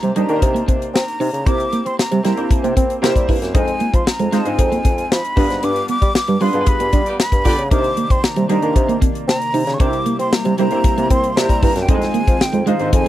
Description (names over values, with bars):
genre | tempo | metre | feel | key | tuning
polished 1980s jazz-funk pop | 115 BPM | 4/4 | straight | unclear | A4 = 438 Hz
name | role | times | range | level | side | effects
breathy concert flute | melody | 0.0-13.1 s | F5 to D6 | -23 LUFS | equal | none
clear baby grand piano | accompaniment | 0.0-13.1 s | G3 to C5 | -23 LUFS | equal | analog chorus
clean electric guitar | riff | 0.0-13.1 s | G3 to F4 | -20 LUFS | right 4 dB | wide subtle chorus
mellow bassoon | bass | 0.0-13.1 s | F2 to C4 | -21 LUFS | equal | none
crisp fusion drum kit | drums | 0.0-13.1 s | hi-hat, kick drum, snare drum | -17 LUFS | left 1 dB | none
warm horn section | second line | 7.1-7.6 s | B3 to D5 | -23 LUFS | right 2 dB | none
warm analog pad | sustained chords | 7.7-13.1 s | C3 to D5 | -26 LUFS | left 2 dB | chorus
room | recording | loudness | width
little or no reverb | dry, close 1970s-style studio recording | -14 LUFS | side -13 dB against mid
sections
0.0-13.1 A section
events
band accent 5.6-7.7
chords
0.0 Cm9; 1.5 C7; 3.5 Fm7; 5.4 G7; 7.7 Cm9; 9.8 C7; 11.9 Fm7